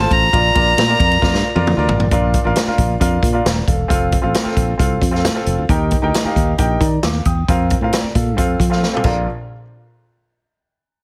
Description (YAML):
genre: uptempo 1960s-style soul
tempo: 134 BPM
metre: 4/4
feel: straight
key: Bb major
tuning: A4 = 443 Hz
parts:
  - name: warm violin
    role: melody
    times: 0.0-1.9 s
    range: A5 to Bb5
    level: -19 LUFS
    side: equal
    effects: slapback echo
  - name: clear grand piano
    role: accompaniment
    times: 0.0-9.3 s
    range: Bb1 to Eb6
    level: -22 LUFS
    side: equal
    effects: none
  - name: fingered electric bass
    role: bass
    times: 0.0-9.3 s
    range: Eb1 to F3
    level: -21 LUFS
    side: equal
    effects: none
  - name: swinging big-band drum kit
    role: drums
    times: 0.1-9.2 s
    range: crash cymbal, hi-hat, kick drum, ride cymbal, snare drum, toms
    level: -20 LUFS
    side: equal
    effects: none
room: small room ambience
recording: heavily compressed radio sound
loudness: -16 LUFS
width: mono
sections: 0.0-2.1 A section; 2.1-9.3 B section; 9.3-11.0 C section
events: drum fill 1.2-2.1, 8.8-9.3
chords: 0.3 Bb; 3.9 F; 5.7 Eb; 7.5 Fsus4; 8.4 F; 9.1 Bb; 9.3 N.C.